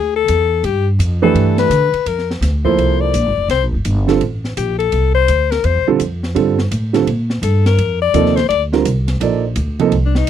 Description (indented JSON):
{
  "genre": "modal jazz",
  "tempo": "168 BPM",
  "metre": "4/4",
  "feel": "swing 65% on 8ths",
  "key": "unclear",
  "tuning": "A4 = 439 Hz",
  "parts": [
    { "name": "clear alto saxophone", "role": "second line", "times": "0.0-10.3 s", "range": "D4 to D5", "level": "-16 LUFS", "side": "left 11 dB", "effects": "none" },
    { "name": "upright bass", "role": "bass", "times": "0.0-10.3 s", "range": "F1 to D3", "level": "-17 LUFS", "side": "equal", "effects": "none" },
    { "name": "open jazz drum kit", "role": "drums", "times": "0.3-10.3 s", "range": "hi-hat, kick drum, ride cymbal, snare drum", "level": "-27 LUFS", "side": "equal", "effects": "none" },
    { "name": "warm upright piano", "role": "accompaniment", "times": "1.2-9.9 s", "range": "C3 to D5", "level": "-15 LUFS", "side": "right 8 dB", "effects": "none" }
  ],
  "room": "little or no reverb",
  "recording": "dry, close 1970s-style studio recording",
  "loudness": "-13 LUFS",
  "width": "side -10 dB against mid",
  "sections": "0.0-2.1 A section; 2.1-10.3 A section",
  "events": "alto saxophone solo 0.0-10.3",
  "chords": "0.0 E7sus4; 0.6 G7; 2.1 C13sus4; 7.8 F7sus4"
}